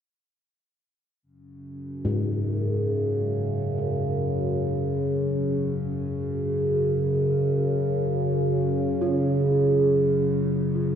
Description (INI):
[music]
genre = dark ambient drone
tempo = free time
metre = none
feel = none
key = unclear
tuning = A4 = 440 Hz
[part]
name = overtone-sweeping drone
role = drone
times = 1.7-11.0 s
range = F#2 to C#3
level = -23 LUFS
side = equal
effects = chorus, built-in reverb
[part]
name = gamelan-type bossed gongs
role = arpeggios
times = 2.0-11.0 s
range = G#2 to E#4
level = -31 LUFS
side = left 1 dB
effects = tape echo
[sound]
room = wet cathedral reverb, RT60 5.4 s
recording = dark, warm production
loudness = -22 LUFS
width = side -8 dB against mid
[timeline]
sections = 1.2-11.0 A section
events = none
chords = 1.2 F#sus2